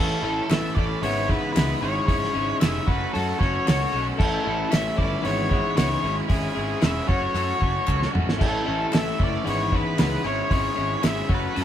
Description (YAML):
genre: indie rock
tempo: 114 BPM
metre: 4/4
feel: straight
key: A major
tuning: A4 = 437 Hz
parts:
  - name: octave-fuzz lead guitar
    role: melody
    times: 0.0-11.6 s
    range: G#4 to E5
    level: -28 LUFS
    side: left 2 dB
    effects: distortion
  - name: crunchy overdriven guitar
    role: riff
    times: 0.0-11.6 s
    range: G#2 to F#4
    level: -30 LUFS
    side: right 6 dB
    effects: none
  - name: twelve-string electric guitar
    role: riff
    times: 0.0-11.6 s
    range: G#2 to A4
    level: -28 LUFS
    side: left 5 dB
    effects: none
  - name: fuzz picked electric bass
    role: bass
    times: 0.0-11.6 s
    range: E1 to F#2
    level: -29 LUFS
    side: equal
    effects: overdrive
  - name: cloth-damped thuddy drum kit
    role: drums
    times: 0.5-11.6 s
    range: crash cymbal, hi-hat, kick drum, snare drum, toms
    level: -24 LUFS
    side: right 1 dB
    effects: none
  - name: group handclap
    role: percussion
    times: 0.5-11.2 s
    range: none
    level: -38 LUFS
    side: left 2 dB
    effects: none
room: moderate stone room reverb, RT60 1.0 s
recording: band playing live in one room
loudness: -21 LUFS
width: side -10 dB against mid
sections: 0.0-11.6 A section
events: drum fill 7.9-8.4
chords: 0.0 A; 1.0 E6/G#; 1.8 C#m/G#; 2.9 F#m; 4.2 A; 5.3 E6/G#; 6.0 C#m/G#; 7.1 F#m; 8.4 A; 9.5 E6/G#; 10.3 C#m/G#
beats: 0.51 1.03 1.56 | 2.09 2.62 3.14 3.67 | 4.20 4.72 5.25 5.78 | 6.30 6.83 7.36 7.88 | 8.41 8.94 9.46 9.99 | 10.52 11.04 11.57